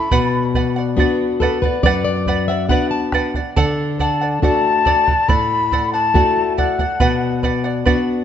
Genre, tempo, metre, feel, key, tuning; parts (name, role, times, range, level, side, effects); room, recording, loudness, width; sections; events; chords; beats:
andean folk, Andean ensemble; 70 BPM; 4/4; straight; A4 = 440 Hz
reedy large quena; melody; 0.0-7.4 s; F#5 to B5; -18 LUFS; left 3 dB; tape echo
charango; accompaniment; 0.0-8.2 s; E4 to A5; -22 LUFS; right 5 dB
flamenco guitar; accompaniment; 0.1-8.2 s; F#2 to A5; -19 LUFS; left 4 dB
bombo; percussion; 0.1-8.1 s; -20 LUFS; right 3 dB
light reverb; nothing above 7.8 kHz; -15 LUFS; side -9 dB against mid
0.0-3.6 A section; 3.6-8.2 A section
nylon-string guitar fill 1.0-3.6
0.1 Bm; 3.6 D; 7.0 Bm
| 0.11 0.97 1.84 2.70 | 3.56 4.42 5.28 6.14 | 7.00 7.85